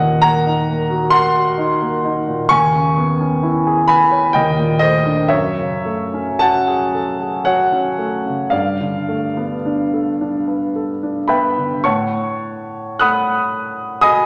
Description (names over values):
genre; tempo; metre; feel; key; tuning
classical, impressionist solo piano; 49-67 BPM; 3/4; rubato; A lydian; A4 = 440 Hz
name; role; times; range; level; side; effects
warm grand piano; solo; 0.0-14.3 s; D#2 to F#6; -17 LUFS; equal; none
room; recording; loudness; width
wet concert hall reverb, RT60 1.8 s; none; -17 LUFS; mono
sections
0.0-11.8 A section; 11.8-14.3 B section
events
none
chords
0.0 D#m6; 2.5 C#m7/D#; 4.4 D#maj7#11; 5.3 F#m9; 8.5 G9; 11.8 A69